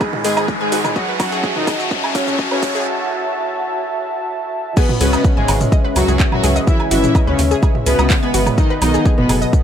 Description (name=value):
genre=melodic techno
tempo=126 BPM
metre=4/4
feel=straight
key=unclear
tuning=A4 = 440 Hz
part: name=dark analog pad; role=sustained chords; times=0.0-9.6 s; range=B3 to B5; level=-24 LUFS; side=right 2 dB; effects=chorus, sidechain pumping
part: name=analog pluck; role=arpeggios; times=0.0-9.5 s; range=F#4 to G#6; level=-26 LUFS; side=equal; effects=chorus, sidechain pumping, digital delay
part: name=analog synth brass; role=stabs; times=0.0-9.6 s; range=G#2 to F#4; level=-24 LUFS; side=left 2 dB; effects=chorus, sidechain pumping, digital delay
part: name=electronic kick drum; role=drums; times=0.0-9.6 s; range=none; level=-15 LUFS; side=equal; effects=none
part: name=house drum kit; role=drums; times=0.0-9.6 s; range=crash cymbal, handclaps, hi-hat, shaker, toms, woodblock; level=-22 LUFS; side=right 2 dB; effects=sidechain pumping on perc, sidechain pumping on hats, sidechain pumping on toms, sidechain pumping on cymbals
part: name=riser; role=sound effects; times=0.0-2.9 s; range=none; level=-24 LUFS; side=left 1 dB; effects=none
part: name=soft supersaw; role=melody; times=0.2-9.3 s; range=F#2 to F#4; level=-22 LUFS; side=equal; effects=sidechain pumping, digital delay
part: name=warm studio violin section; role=second line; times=0.2-9.3 s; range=F#4 to F#5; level=-26 LUFS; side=equal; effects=sidechain pumping, digital delay
part: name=tight sequencer bass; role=bass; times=0.2-9.5 s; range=F#1 to G#2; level=-19 LUFS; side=equal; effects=sidechain pumping, high-pass filter
room=light reverb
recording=high-pass filter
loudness=-14 LUFS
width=side -9 dB against mid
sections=0.0-4.8 A section; 4.8-9.6 B section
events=build-up 0.0-4.8; drum fill 0.0-2.9; riser 0.0-2.9; filter sweep on violin section 0.0-4.8; filter sweep 0.0-4.8; break 2.9-4.8; drop 4.8-9.6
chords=0.0 G#m; 1.0 F#m7; 4.8 C#m7; 8.6 B7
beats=0.01 0.48 | 0.96 1.44 1.91 2.39 | 2.86 3.34 3.82 4.29 | 4.77 5.25 5.72 6.20 | 6.67 7.15 7.63 8.10 | 8.58 9.05 9.53